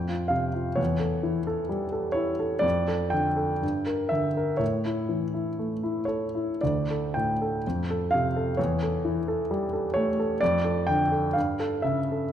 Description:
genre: classical, romantic character piece for solo piano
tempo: 55-67 BPM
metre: 2/4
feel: rubato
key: unclear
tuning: A4 = 440 Hz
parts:
  - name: clear grand piano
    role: solo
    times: 0.0-12.3 s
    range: D2 to G5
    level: -24 LUFS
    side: equal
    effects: none
room: moderate recital hall reverb, RT60 1.5 s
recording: dark, warm production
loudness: -24 LUFS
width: side -10 dB against mid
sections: 0.0-12.3 A section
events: none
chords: 0.0 F5; 0.8 A7/E; 2.6 Dm/F; 3.6 Em7b5/G; 4.6 A; 6.6 D5; 7.6 F; 8.6 A7/E; 10.4 Dm/F; 11.4 A7/G

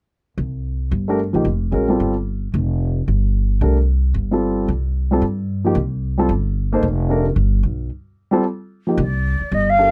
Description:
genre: modal jazz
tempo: 223 BPM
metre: 4/4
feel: swing 60% on 8ths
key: C dorian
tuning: A4 = 435 Hz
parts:
  - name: upright bass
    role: bass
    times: 0.4-9.9 s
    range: F1 to G2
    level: -21 LUFS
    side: equal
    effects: none
  - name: warm grand piano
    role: accompaniment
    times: 1.1-9.9 s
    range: F3 to C5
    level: -21 LUFS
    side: equal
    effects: none
  - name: mellow concert flute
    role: melody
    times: 9.0-9.9 s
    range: D5 to F5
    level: -19 LUFS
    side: equal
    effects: none
room: little or no reverb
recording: dry, close 1970s-style studio recording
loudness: -20 LUFS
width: mono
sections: 0.4-9.0 A section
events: break 7.9-9.0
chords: 0.4 C7sus4; 9.0 Csus4

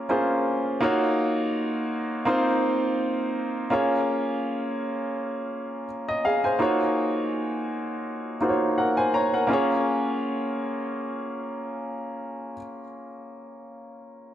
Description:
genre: R&B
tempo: 83 BPM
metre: 4/4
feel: swing 54% on 16ths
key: Bb minor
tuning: A4 = 440 Hz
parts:
  - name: clear baby grand piano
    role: solo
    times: 0.0-14.3 s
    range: Bb3 to Bb5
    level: -24 LUFS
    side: equal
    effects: digital delay
room: moderate plate reverb, RT60 2.7 s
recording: none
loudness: -23 LUFS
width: side -11 dB against mid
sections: 0.0-3.7 A section; 3.7-9.5 B section; 9.5-12.4 C section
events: none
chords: 0.0 Bbm7; 0.8 Ebm9; 2.3 F7sus4; 3.7 Bbm7; 6.6 Ebm9; 9.5 Bbm7

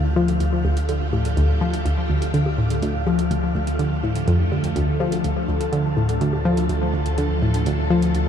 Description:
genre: ambient, sequencer-driven space music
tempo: 124 BPM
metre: 4/4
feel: straight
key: D minor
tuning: A4 = 440 Hz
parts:
  - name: phased string machine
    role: sustained chords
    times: 0.0-8.3 s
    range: D3 to A4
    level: -28 LUFS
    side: equal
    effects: ensemble chorus, phaser
  - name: analog pluck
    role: riff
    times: 0.0-8.2 s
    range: D2 to F3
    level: -20 LUFS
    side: left 1 dB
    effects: chorus, tape echo
  - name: warm sub bass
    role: bass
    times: 0.0-8.3 s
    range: D2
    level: -25 LUFS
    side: equal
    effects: none
  - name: wind-like tuned noise texture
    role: texture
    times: 0.0-8.3 s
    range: F5 to A5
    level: -34 LUFS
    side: equal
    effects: built-in reverb
  - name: electronic hi-hat and bongos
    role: percussion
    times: 0.3-8.2 s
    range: none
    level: -37 LUFS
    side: right 2 dB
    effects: tape echo
room: moderate shimmer reverb, RT60 7.2 s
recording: dark, warm production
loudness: -19 LUFS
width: side -8 dB against mid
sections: 0.0-8.3 A section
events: filter sweep on synth arpeggio sound 0.0-8.3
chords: 0.0 Dm

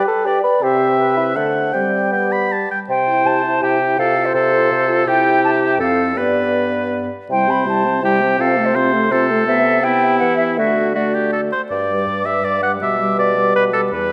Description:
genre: quick classical-period movement for wind quintet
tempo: 164 BPM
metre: 3/4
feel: straight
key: C major, G major from 9.5 s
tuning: A4 = 440 Hz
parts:
  - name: silver concert flute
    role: melody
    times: 0.0-14.1 s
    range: G4 to D6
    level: -22 LUFS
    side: equal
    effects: none
  - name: warm oboe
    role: second line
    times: 0.0-14.1 s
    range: E4 to B5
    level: -22 LUFS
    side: equal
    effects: none
  - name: dark clarinet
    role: accompaniment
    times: 0.0-14.1 s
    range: E4 to D5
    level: -28 LUFS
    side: equal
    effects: none
  - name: mellow bassoon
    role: bass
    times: 0.0-14.1 s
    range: E2 to B4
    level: -23 LUFS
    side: equal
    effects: none
  - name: clear French horn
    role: accompaniment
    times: 0.6-14.1 s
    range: C3 to F4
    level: -25 LUFS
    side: equal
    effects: none
room: wet scoring stage reverb, RT60 1.9 s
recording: none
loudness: -17 LUFS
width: mono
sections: 0.0-2.9 A section; 2.9-11.7 B section; 11.7-14.1 A section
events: none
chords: 0.0 G; 0.6 C; 1.4 D7; 1.7 G; 2.9 C; 4.0 F/C; 5.1 C; 5.8 F; 6.2 G; 7.3 C; 8.4 F/C; 9.5 Cmaj7; 10.6 D; 11.7 G; 12.8 G/B

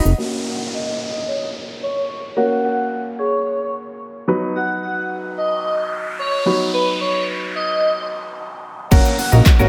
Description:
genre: dance-pop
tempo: 110 BPM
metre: 4/4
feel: straight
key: F# major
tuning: A4 = 442 Hz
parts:
  - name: warm baby grand piano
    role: accompaniment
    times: 0.0-9.7 s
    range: F#3 to D#5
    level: -26 LUFS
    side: equal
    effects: sidechain pumping, low-pass filter, dub echo
  - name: clean electric guitar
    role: riff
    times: 0.0-0.1, 8.9-9.7 s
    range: C#4 to A#4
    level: -26 LUFS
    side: equal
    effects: analog chorus
  - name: fat analog bass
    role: bass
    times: 0.1, 8.9-9.7 s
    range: E#1 to A#1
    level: -15 LUFS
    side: equal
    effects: sidechain pumping
  - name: deep house drum kit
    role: drums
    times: 0.1-0.2, 8.9-9.7 s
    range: crash cymbal, handclaps, hi-hat, kick drum, shaker, snare drum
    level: -16 LUFS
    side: equal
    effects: none
  - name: airy dreamy lead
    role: melody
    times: 0.2-9.4 s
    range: B4 to F#5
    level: -25 LUFS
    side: equal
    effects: chorus, sidechain pumping, low-pass filter, dub echo
  - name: downlifter and noise sweep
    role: sound effects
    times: 0.2-9.7 s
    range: none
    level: -31 LUFS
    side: equal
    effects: none
  - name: marimba with hard mallets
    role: melody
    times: 0.7-4.2 s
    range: G#4 to D#5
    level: -27 LUFS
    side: equal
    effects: low-pass filter, dub echo
  - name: group handclap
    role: percussion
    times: 9.5-9.6 s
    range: none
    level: barely audible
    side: none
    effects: none
room: moderate echo chamber reverb, RT60 2.1 s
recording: echo-heavy mix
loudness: -20 LUFS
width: mono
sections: 0.2-8.9 A section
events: grand piano fill 0.0; filter sweep 0.2-8.9; noise sweep 5.2-8.9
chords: 0.2 F#; 4.3 B/F#; 8.9 F#

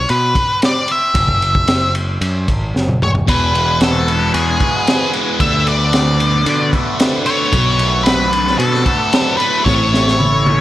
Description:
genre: psychedelic rock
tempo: 113 BPM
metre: 4/4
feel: straight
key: unclear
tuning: A4 = 440 Hz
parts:
  - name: octave-fuzz lead guitar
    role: melody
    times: 0.0-10.6 s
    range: G#4 to E5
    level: -17 LUFS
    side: left 1 dB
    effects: distortion, analog delay
  - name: growling picked electric bass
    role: bass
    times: 0.0-10.6 s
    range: E1 to D3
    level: -19 LUFS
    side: equal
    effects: overdrive
  - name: crunchy breakbeat drum kit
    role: drums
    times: 0.1-10.6 s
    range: kick drum, ride cymbal, snare drum, toms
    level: -18 LUFS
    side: equal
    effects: none
  - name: overdriven combo organ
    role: sustained chords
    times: 3.3-10.6 s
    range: A3 to G#5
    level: -26 LUFS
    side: right 4 dB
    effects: none
  - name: thick fuzz guitar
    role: riff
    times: 3.3-10.6 s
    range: E2 to F#4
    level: -18 LUFS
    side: left 1 dB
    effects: distortion, phaser
room: light reverb, small room ambience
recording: none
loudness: -12 LUFS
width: side -14 dB against mid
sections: 0.0-10.6 A section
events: drum fill 2.7-3.3, 9.7-10.6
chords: 0.0 Bm; 1.1 Esus2; 3.3 Eadd9; 5.4 D6; 7.5 Bm7; 9.7 A

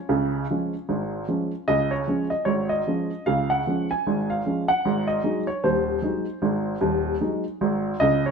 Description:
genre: ragtime piano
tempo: 76 BPM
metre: 2/4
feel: swing 60% on 16ths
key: Db major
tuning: A4 = 440 Hz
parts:
  - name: warm upright piano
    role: solo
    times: 0.0-8.3 s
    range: Eb1 to Ab5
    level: -22 LUFS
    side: right 1 dB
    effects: none
room: moderate stone room reverb, RT60 1.1 s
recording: band playing live in one room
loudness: -22 LUFS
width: side -5 dB against mid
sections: 0.0-1.7 A section; 1.7-8.3 B section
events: none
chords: 0.0 Db; 4.9 Ab7

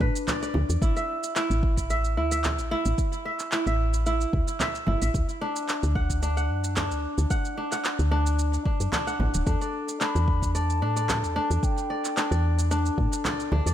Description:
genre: organic downtempo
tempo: 111 BPM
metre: 4/4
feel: swing 54% on 16ths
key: E minor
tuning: A4 = 440 Hz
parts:
  - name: kora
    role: arpeggios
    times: 0.0-13.7 s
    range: D4 to F#5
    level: -29 LUFS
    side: equal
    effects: digital delay
  - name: woody FM bass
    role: bass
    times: 0.0-13.7 s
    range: D1 to A2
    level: -25 LUFS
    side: equal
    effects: tube saturation, sidechain pumping
  - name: electronic kick drum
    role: drums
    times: 0.0-13.1 s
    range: none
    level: -26 LUFS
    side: equal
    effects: none
  - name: electronic shaker and handclaps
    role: drums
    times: 0.2-13.7 s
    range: none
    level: -32 LUFS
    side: right 1 dB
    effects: overdrive
  - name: frame drum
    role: percussion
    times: 0.3-13.6 s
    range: none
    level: -33 LUFS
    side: right 2 dB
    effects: none
  - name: quartz singing bowl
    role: texture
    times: 9.5-13.7 s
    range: A4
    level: -40 LUFS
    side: left 8 dB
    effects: none
  - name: breathy mellow bansuri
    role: melody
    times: 10.0-12.4 s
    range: G5 to B5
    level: -33 LUFS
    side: equal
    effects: ping-pong delay
room: light reverb, studio reverb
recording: none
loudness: -23 LUFS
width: side -11 dB against mid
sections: 0.0-13.7 A section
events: none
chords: 0.0 N.C.; 0.8 A5; 5.1 D

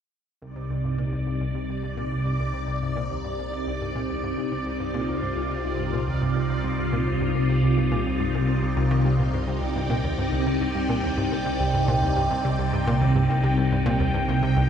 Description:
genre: ambient, sequencer-driven space music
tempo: 106 BPM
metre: 4/4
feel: straight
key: C minor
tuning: A4 = 442 Hz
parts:
  - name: phased string machine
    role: sustained chords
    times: 0.4-14.7 s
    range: C2 to G5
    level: -23 LUFS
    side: equal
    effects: ensemble chorus, phaser
  - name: analog pluck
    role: riff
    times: 0.4-14.6 s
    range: C2 to G3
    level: -30 LUFS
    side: equal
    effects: chorus, ping-pong delay
  - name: bubbling stepped-filter texture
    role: texture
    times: 0.4-14.7 s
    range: D5 to G5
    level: -32 LUFS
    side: right 1 dB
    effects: chorus, built-in reverb
room: wet spring reverb, RT60 2.6 s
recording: echo-heavy mix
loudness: -22 LUFS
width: side -8 dB against mid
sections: 0.4-14.7 A section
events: fade-in on synth arpeggio sound 0.4-14.7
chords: 0.4 Cmadd9

